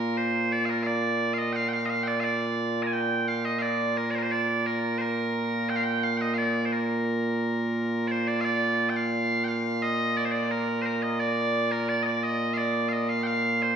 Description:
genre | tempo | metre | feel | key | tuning
scottish traditional, Scottish pipe music | 87 BPM | 2/4 | straight | Bb major | A4 = 439 Hz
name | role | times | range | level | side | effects
loud bright bagpipes | solo | 0.0-13.8 s | Bb2 to Bb5 | -24 LUFS | right 1 dB | none
room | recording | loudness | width
wet recital hall reverb, RT60 1.6 s | heard from further back in the room, small room reverb | -24 LUFS | side -7 dB against mid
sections
0.0-8.4 A section; 8.4-13.8 B section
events
none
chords
none

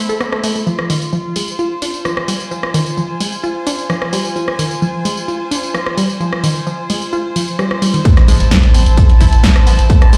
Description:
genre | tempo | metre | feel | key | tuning
driving peak-time techno | 130 BPM | 4/4 | straight | unclear | A4 = 436 Hz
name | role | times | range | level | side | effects
warm chamber string section | texture | 0.0-10.2 s | E4 to B5 | -25 LUFS | equal | sidechain pumping
unison pluck | riff | 0.1-10.2 s | D#3 to A4 | -22 LUFS | equal | sidechain pumping, delay
punchy analog drum machine | drums | 0.1-10.2 s | hi-hat, rim click, snare drum, tambourine | -23 LUFS | equal | none
electronic kick drum | drums | 8.1-10.0 s | none | -11 LUFS | equal | none
electronic tambourine and snare drum | drums | 8.1-10.2 s | none | -36 LUFS | equal | none
impact | sound effects | 8.1-9.9 s | none | -22 LUFS | equal | none
saturated sub bass | bass | 8.2-10.2 s | A1 | -15 LUFS | equal | overdrive, sidechain pumping, low-pass filter
room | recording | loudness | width
moderate stone room reverb, RT60 1.0 s | played on a big sound system in a bare room, stone room reverb | -15 LUFS | mono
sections
0.0-8.1 A section; 8.1-10.2 B section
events
drop 8.1-10.2; impact 8.1-9.9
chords
0.0 Am; 0.7 Fm; 8.1 Am

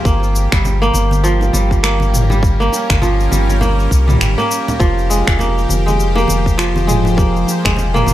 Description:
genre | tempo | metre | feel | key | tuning
organic downtempo | 101 BPM | 4/4 | swing 59% on 16ths | unclear | A4 = 440 Hz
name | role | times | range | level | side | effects
bowed-like drone | sustained chords | 0.0-8.1 s | F3 to C5 | -23 LUFS | left 1 dB | built-in reverb, phaser, sidechain pumping
kora | arpeggios | 0.0-8.1 s | F3 to F4 | -18 LUFS | right 1 dB | tape echo
warm sub bass | bass | 0.1-8.1 s | F1 to C2 | -16 LUFS | equal | none
electronic kick drum | drums | 0.1-7.8 s | none | -15 LUFS | equal | none
organic electronic drum kit | drums | 0.1-8.1 s | cabasa, finger snaps, toms | -20 LUFS | equal | none
congas and bongos | percussion | 0.7-8.1 s | none | -24 LUFS | right 1 dB | none
room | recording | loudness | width
digital ambience | none | -12 LUFS | side -14 dB against mid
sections
0.0-8.1 A section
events
none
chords
0.1 Gdim; 4.8 Fmadd9

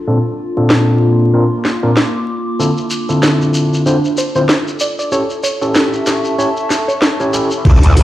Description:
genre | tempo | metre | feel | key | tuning
glitch hop | 95 BPM | 4/4 | swing 57% on 16ths | unclear | A4 = 440 Hz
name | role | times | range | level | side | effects
impact | sound effects | 0.0-0.1, 7.7-8.0 s | none | -13 LUFS | equal | none
warbly tape-like pad | texture | 0.0-8.0 s | Bb3 to D6 | -20 LUFS | equal | chorus, built-in reverb, sidechain pumping
overdriven tine electric piano | stabs | 0.1-7.8 s | Bb2 to C#5 | -14 LUFS | equal | vintage 12-bit sampler grit, sidechain pumping, low-pass filter, digital delay
drum and bass drum kit | drums | 0.7-8.0 s | crash cymbal, hi-hat, snare drum | -15 LUFS | equal | none
shekere | percussion | 2.6-7.6 s | none | -24 LUFS | left 1 dB | none
woody wave-folded pluck | melody | 4.2-7.7 s | C5 to D5 | -20 LUFS | right 1 dB | chorus, digital delay
growl bass | bass | 7.7-8.0 s | D2 | -9 LUFS | equal | chorus, overdrive
electronic kick drum | drums | 7.7-7.8 s | none | -10 LUFS | equal | none
room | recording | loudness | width
wet studio reverb, RT60 0.5 s | played on a big sound system in a bare room, large studio reverb, vinyl crackle | -12 LUFS | side -14 dB against mid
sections
0.0-7.7 A section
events
impact 7.7-8.0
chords
0.1 Bbmaj7; 2.6 Dm7; 5.1 A7

